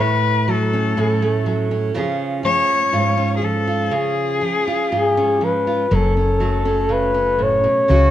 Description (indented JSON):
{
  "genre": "folk",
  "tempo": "61 BPM",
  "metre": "4/4",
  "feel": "straight",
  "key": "F# minor",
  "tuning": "A4 = 437 Hz",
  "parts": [
    { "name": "warm cello", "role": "second line", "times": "0.0-5.4 s", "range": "G#4 to C#5", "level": "-20 LUFS", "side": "left 4 dB", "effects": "none" },
    { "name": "fingerpicked steel-string acoustic guitar", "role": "accompaniment", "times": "0.0-8.1 s", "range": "F#2 to G#4", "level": "-20 LUFS", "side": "right 2 dB", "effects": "none" },
    { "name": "breathy flugelhorn", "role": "melody", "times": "4.9-8.1 s", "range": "G#4 to C#5", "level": "-17 LUFS", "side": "left 2 dB", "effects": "none" },
    { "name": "woody fretless electric bass", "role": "bass", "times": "5.9-8.1 s", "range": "F#1 to C#2", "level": "-19 LUFS", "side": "equal", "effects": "none" }
  ],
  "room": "moderate large studio reverb, RT60 1.2 s",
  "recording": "minimal, uncompressed stereo recording",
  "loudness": "-16 LUFS",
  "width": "side -12 dB against mid",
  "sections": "0.0-5.9 A section; 5.9-8.1 B section",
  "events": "cello solo 0.0-5.9",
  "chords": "0.0 F#m/A; 2.0 C#; 5.9 F#m",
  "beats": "0.97 | 1.96 2.93 3.92 4.91 | 5.91 6.90 7.89"
}